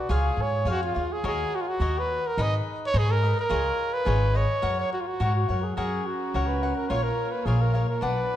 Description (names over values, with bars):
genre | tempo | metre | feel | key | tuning
mexican folk, mariachi | 106 BPM | 2/4 | rubato | F# major | A4 = 441 Hz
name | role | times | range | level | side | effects
warm trumpet | melody | 0.0-8.4 s | E#4 to D#5 | -28 LUFS | right 1 dB | none
cavaquinho | accompaniment | 0.0-8.4 s | D4 to F#5 | -31 LUFS | left 4 dB | none
upright bass | bass | 0.1-8.2 s | G#1 to G#2 | -26 LUFS | equal | none
muted studio violin section | sustained chords | 5.8-8.4 s | A#3 to D5 | -34 LUFS | right 2 dB | none
room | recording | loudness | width
moderate scoring stage reverb, RT60 1.6 s | dark, warm production | -23 LUFS | side -12 dB against mid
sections
0.0-5.8 A section; 5.8-8.4 A section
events
none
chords
0.1 C#; 1.2 D#m7; 2.4 G#m; 3.5 C#add9; 4.6 F#; 6.9 A#m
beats
| 0.10 0.67 | 1.25 1.82 | 2.39 2.95 | 3.51 4.07 | 4.64 5.21 | 5.78 6.35 | 6.91 7.47 | 8.03